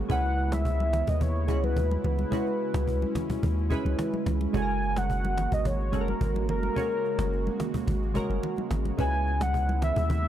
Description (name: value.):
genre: afrobeats.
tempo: 108 BPM.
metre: 4/4.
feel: straight.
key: unclear.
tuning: A4 = 438 Hz.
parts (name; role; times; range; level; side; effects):
glassy digital keys; accompaniment; 0.0-10.3 s; G#3 to C#5; -33 LUFS; right 2 dB; chorus, phaser.
airy breathy pad; sustained chords; 0.0-10.3 s; C#3 to F#4; -35 LUFS; right 1 dB; chorus.
punchy sub bass; bass; 0.0-10.3 s; F#1 to D#2; -28 LUFS; equal; none.
warm velvety synth lead; melody; 0.1-10.3 s; A#4 to G#5; -31 LUFS; equal; chorus.
cajon; drums; 0.1-10.3 s; none; -34 LUFS; equal; none.
congas; percussion; 0.5-10.2 s; none; -36 LUFS; left 1 dB; none.
room: small room ambience.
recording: dry, gritty hardware recording, transformer saturation.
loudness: -25 LUFS.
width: side -11 dB against mid.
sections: 0.0-10.3 A section.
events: none.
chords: 0.1 C#m7; 4.5 F#add9; 9.0 C#m7.